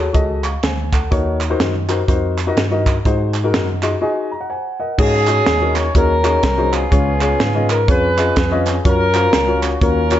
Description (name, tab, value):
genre	uptempo gospel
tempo	124 BPM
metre	4/4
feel	swing 61% on 8ths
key	unclear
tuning	A4 = 445 Hz
part	dark upright piano	accompaniment	0.0-10.2 s	Ab2 to Db6	-20 LUFS	left 3 dB	none
part	mellow tine electric piano	bass	0.0-10.2 s	C2 to Ab2	-20 LUFS	right 1 dB	none
part	crisp fusion drum kit	drums	0.1-10.2 s	crash cymbal, hi-hat, kick drum, snare drum	-19 LUFS	right 1 dB	none
part	group handclap	percussion	0.4-10.2 s	none	-27 LUFS	right 6 dB	none
part	mellow horn section	melody	5.0-10.2 s	Cb4 to Db5	-17 LUFS	equal	none
room	light reverb, small room ambience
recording	nothing above 7.8 kHz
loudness	-14 LUFS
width	side -12 dB against mid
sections	0.0-5.0 A section; 5.0-10.2 B section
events	upright piano fill 3.5-5.0; break 4.0-5.0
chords	0.0 Gbmadd9; 1.1 Ebm7; 3.1 Ab7; 5.0 Ab7sus4; 6.9 Db7; 7.9 Db7/F; 8.8 Gbmaj7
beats	0.15 0.63 | 1.12 1.60 2.08 2.57 | 3.05 3.54 4.02 4.50 | 4.99 5.47 5.95 6.44 | 6.92 7.40 7.88 8.37 | 8.85 9.33 9.81